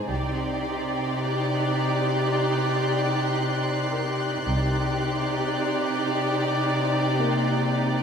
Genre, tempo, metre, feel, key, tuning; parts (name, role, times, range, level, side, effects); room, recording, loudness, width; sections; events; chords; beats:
cinematic, suspense film score; 55 BPM; 4/4; straight; A4 = 440 Hz
dark studio violin section; melody; 0.0-8.0 s; D5; -30 LUFS; left 2 dB
warm studio violin section; second line; 0.0-8.0 s; G4; -30 LUFS; left 2 dB
dark chamber viola section; accompaniment; 0.0-8.0 s; Eb4; -29 LUFS; right 3 dB
warm studio cello section; bass; 0.0-8.0 s; C3; -27 LUFS; equal
warm concert grand piano; texture; 0.0-8.0 s; Bb3 to Bb4; -34 LUFS; left 2 dB
warm studio double bass section; bass; 0.1-5.5 s; C2; -30 LUFS; equal
rich studio violin section; texture; 0.1-8.0 s; C6 to Gb6; -35 LUFS; left 2 dB
wet recital hall reverb, RT60 1.6 s; minimal, uncompressed stereo recording; -22 LUFS; side -7 dB against mid
0.0-8.0 A section
0.1 Cmadd9
| 0.10 1.19 2.28 3.37 | 4.46 5.55 6.64 7.73